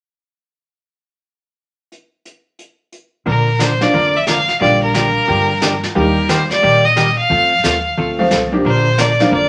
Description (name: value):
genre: country, western swing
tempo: 178 BPM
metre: 4/4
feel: swing 64% on 8ths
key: Bb major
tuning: A4 = 440 Hz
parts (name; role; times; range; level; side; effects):
- jazz brush drum kit; drums; 1.9-9.5 s; brushed snare drum, hi-hat, snare drum; -24 LUFS; equal; none
- clear fiddle; melody; 3.3-9.5 s; Bb4 to F5; -17 LUFS; equal; none
- hollow-body jazz guitar; accompaniment; 3.3-9.5 s; D3 to Bb4; -22 LUFS; equal; none
- upright bass; bass; 3.3-9.5 s; F1 to G2; -23 LUFS; equal; none
- tack piano; accompaniment; 3.8-9.3 s; F3 to G4; -20 LUFS; equal; none
room: wet studio reverb, RT60 0.5 s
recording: none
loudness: -14 LUFS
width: mono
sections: 1.9-3.3 A section; 3.3-8.6 B section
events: none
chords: 1.9 N.C.; 3.3 Bb; 4.6 Gm7/Bb; 6.0 Eb; 7.3 F; 8.6 Bb